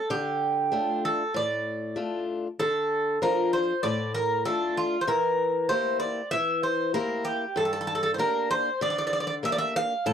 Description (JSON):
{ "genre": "greek folk, Greek bouzouki band", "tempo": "96 BPM", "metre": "4/4", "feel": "straight", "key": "D minor", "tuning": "A4 = 439 Hz", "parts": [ { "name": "Greek bouzouki", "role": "melody", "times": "0.0-10.1 s", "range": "F4 to F5", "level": "-26 LUFS", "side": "right 2 dB", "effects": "none" }, { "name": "picked old ladder-braced acoustic guitar", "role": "accompaniment", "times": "0.1-10.1 s", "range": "G2 to G4", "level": "-30 LUFS", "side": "left 4 dB", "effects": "none" } ], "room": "light reverb", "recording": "dry, close 1970s-style studio recording", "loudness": "-24 LUFS", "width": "side -8 dB against mid", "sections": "0.0-2.6 A section; 2.6-10.1 B section", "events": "none", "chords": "0.1 Dm; 5.1 Edim; 7.6 Gm" }